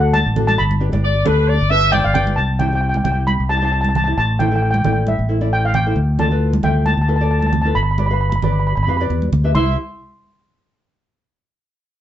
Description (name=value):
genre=calypso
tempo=134 BPM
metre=4/4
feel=swing 53% on 16ths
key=C major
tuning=A4 = 440 Hz
part: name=steel pan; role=melody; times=0.0-9.8 s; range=E5 to C6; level=-20 LUFS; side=equal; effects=none
part: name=nylon-string guitar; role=accompaniment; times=0.0-9.8 s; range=D4 to F5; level=-24 LUFS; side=left 2 dB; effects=none
part: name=fingered electric bass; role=bass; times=0.0-9.8 s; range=G1 to F2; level=-17 LUFS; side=equal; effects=none
part: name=congas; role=percussion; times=0.1-9.8 s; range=none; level=-24 LUFS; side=right 3 dB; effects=none
part: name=clear horn section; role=second line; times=1.0-2.4, 9.6-9.8 s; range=B4 to E5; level=-18 LUFS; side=right 1 dB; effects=none
room=moderate studio reverb, RT60 0.7 s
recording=band playing live in one room, nothing above 7.9 kHz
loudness=-14 LUFS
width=side -11 dB against mid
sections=0.0-2.4 A section; 2.4-9.5 B section; 9.5-11.3 C section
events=none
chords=0.0 D; 0.6 G; 2.4 C; 4.2 Am; 6.0 Dm; 7.8 G7; 9.5 C